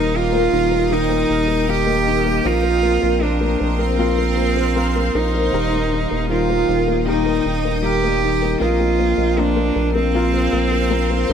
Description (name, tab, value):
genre	pop ballad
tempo	78 BPM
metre	4/4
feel	straight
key	unclear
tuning	A4 = 439 Hz
part	clear cello	melody	0.0-11.3 s	C4 to G4	-20 LUFS	right 5 dB	tape echo
part	warm baby grand piano	accompaniment	0.0-11.3 s	Eb3 to F4	-22 LUFS	left 4 dB	tape echo
part	shimmering ambient pad	sustained chords	0.0-11.3 s	Bb4 to Eb6	-26 LUFS	equal	chorus, built-in reverb, phaser
part	direct-recorded clean electric guitar	arpeggios	0.0-11.3 s	Eb3 to Bb4	-28 LUFS	left 8 dB	analog chorus
part	saturated sub bass	bass	0.0-11.3 s	Eb1 to Bb1	-22 LUFS	equal	none
room	light reverb, studio ambience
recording	echo-heavy mix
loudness	-16 LUFS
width	side -7 dB against mid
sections	0.0-11.3 A section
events	none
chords	0.0 Eb; 2.5 Bbsus2; 5.5 Eb; 8.6 Bbsus2